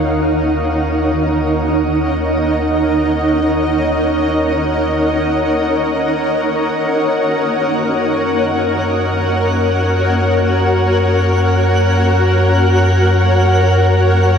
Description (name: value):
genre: ambient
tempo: free time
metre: none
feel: none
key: Eb minor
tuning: A4 = 440 Hz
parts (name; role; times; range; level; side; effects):
- granular cloud pad; sustained chords; 0.0-14.4 s; Eb4 to Gb5; -14 LUFS; equal; built-in reverb
- round analog bass; bass; 0.0-14.4 s; Eb2 to Gb2; -17 LUFS; equal; none
- twinkling granular texture; texture; 7.2-14.4 s; Gb4 to Gb5; -20 LUFS; left 2 dB; built-in reverb
room: wet shimmer reverb, RT60 8.0 s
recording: dark, warm production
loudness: -12 LUFS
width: side -7 dB against mid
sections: 0.0-14.4 A section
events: fade-in on analog synth bass 0.0-14.4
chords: 0.0 Ebm7; 6.8 Gb